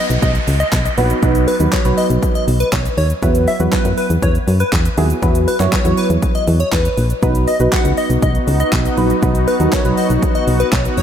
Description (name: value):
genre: dance-pop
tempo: 120 BPM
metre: 4/4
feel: straight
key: B major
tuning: A4 = 441 Hz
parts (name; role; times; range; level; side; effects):
- plucky unison lead; melody; 0.0-11.0 s; B4 to F#5; -21 LUFS; left 2 dB; sidechain pumping, ping-pong delay
- deep mellow chord stab; accompaniment; 0.0-10.6 s; F#3 to C#5; -20 LUFS; right 2 dB; chorus, sidechain pumping
- downlifter; sound effects; 0.0-3.2 s; none; -28 LUFS; equal; none
- solid FM bass; bass; 0.1-11.0 s; E#1 to F#2; -16 LUFS; equal; sidechain pumping
- house drum kit; drums; 0.1-11.0 s; handclaps, hi-hat, kick drum, shaker, snare drum; -19 LUFS; equal; none
- lush unison pad; sustained chords; 7.6-11.0 s; B3 to F#4; -21 LUFS; left 1 dB; chorus, sidechain pumping
room: moderate church reverb, RT60 3.8 s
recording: dreamy mix soaked in reverb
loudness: -13 LUFS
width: side -9 dB against mid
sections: 0.0-11.0 A section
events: none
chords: 0.0 B; 3.2 Esus2; 7.2 B